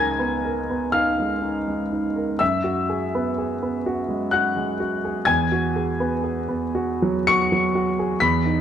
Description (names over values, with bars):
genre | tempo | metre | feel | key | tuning
classical, impressionist solo piano | 57-65 BPM | 3/4 | rubato | unclear | A4 = 440 Hz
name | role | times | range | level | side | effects
clear grand piano | solo | 0.0-8.6 s | C#2 to C#7 | -20 LUFS | equal | none
room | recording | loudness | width
moderate scoring stage reverb, RT60 1.9 s | close, detailed microphones | -20 LUFS | side -9 dB against mid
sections
0.0-8.6 A section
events
none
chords
0.0 C#13; 2.4 F#9sus4; 5.3 Eadd9